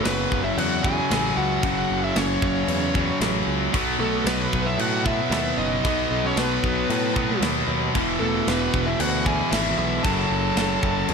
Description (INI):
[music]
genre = heavy metal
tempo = 114 BPM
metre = 4/4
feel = straight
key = F# minor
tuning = A4 = 444 Hz
[part]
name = high-gain lead guitar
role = melody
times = 0.0-11.1 s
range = A4 to A5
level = -28 LUFS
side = left 1 dB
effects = distortion
[part]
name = high-gain lead guitar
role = second line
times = 0.0-11.1 s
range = A3 to A4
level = -32 LUFS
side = right 4 dB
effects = distortion, tape echo
[part]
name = heavy high-gain guitar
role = riff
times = 0.0-11.1 s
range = E2 to B3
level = -28 LUFS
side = right 15 dB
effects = distortion
[part]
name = thick fuzz guitar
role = riff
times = 0.0-11.1 s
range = E2 to B3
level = -28 LUFS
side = left 1 dB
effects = distortion
[part]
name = tight distorted guitar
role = riff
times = 0.0-11.1 s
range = E2 to B3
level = -28 LUFS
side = left 15 dB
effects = distortion
[part]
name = modern bright picked electric bass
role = bass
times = 0.1-11.1 s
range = E1 to A2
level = -29 LUFS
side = equal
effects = none
[part]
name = tight metal drum kit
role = drums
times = 0.1-11.1 s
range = crash cymbal, kick drum, snare drum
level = -28 LUFS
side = equal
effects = none
[sound]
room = light reverb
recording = none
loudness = -20 LUFS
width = side -5 dB against mid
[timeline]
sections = 0.0-11.1 A section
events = none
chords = 0.0 F#5; 3.7 B; 7.9 E; 10.0 F#m